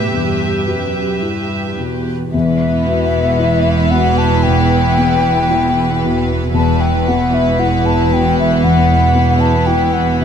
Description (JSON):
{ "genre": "cinematic, emotional film score for orchestra", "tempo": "57 BPM", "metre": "4/4", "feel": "rubato", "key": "E minor", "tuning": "A4 = 440 Hz", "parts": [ { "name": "rich studio violin section", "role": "melody", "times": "0.0-10.2 s", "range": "B4 to E5", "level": "-24 LUFS", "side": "left 3 dB", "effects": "none" }, { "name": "warm studio violin section", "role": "second line", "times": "0.0-10.2 s", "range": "B3 to B4", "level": "-22 LUFS", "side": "left 2 dB", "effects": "none" }, { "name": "felt-muted upright piano", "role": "accompaniment", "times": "0.0-10.2 s", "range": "E2 to G4", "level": "-19 LUFS", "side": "left 4 dB", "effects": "none" }, { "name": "warm studio viola section", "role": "accompaniment", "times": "0.0-10.2 s", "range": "E3 to G4", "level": "-23 LUFS", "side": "right 1 dB", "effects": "none" }, { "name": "warm studio cello section", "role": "bass", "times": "0.0-10.2 s", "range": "E2 to A2", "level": "-19 LUFS", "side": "right 3 dB", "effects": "none" }, { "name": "mellow hollow silver concert flute", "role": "second line", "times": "2.3-10.2 s", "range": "E5 to A5", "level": "-18 LUFS", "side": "left 3 dB", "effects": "none" }, { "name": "dark studio double bass section", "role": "bass", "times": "2.3-10.2 s", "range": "E1", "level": "-18 LUFS", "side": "right 4 dB", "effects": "none" } ], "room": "light reverb", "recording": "close, detailed microphones", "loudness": "-12 LUFS", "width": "side -8 dB against mid", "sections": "0.0-2.3 A section; 2.3-10.2 A section", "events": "none", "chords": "0.0 Emadd9; 2.3 Em" }